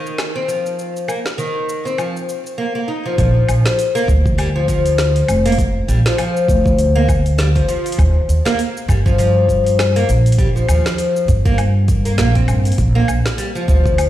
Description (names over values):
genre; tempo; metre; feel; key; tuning
organic downtempo; 100 BPM; 4/4; swing 58% on 16ths; unclear; A4 = 440 Hz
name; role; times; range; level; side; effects
oud; arpeggios; 0.0-14.1 s; Eb3 to Eb4; -18 LUFS; left 2 dB; ping-pong delay
afro-pop drum kit; drums; 0.1-14.1 s; hi-hat, shaker, snare drum, woodblock; -25 LUFS; left 1 dB; small room ambience
upright bass; bass; 3.2-14.1 s; F1 to G2; -15 LUFS; equal; sidechain pumping
electronic kick drum; drums; 3.2-14.0 s; none; -17 LUFS; right 1 dB; small room ambience
room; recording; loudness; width
light reverb, digital ambience; played on a big sound system in a bare room, stone room reverb; -13 LUFS; side -13 dB against mid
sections
0.0-3.2 A section; 3.2-14.1 B section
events
none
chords
0.0 Eb5; 3.2 Bb; 8.0 Eb (rootless); 12.8 Bb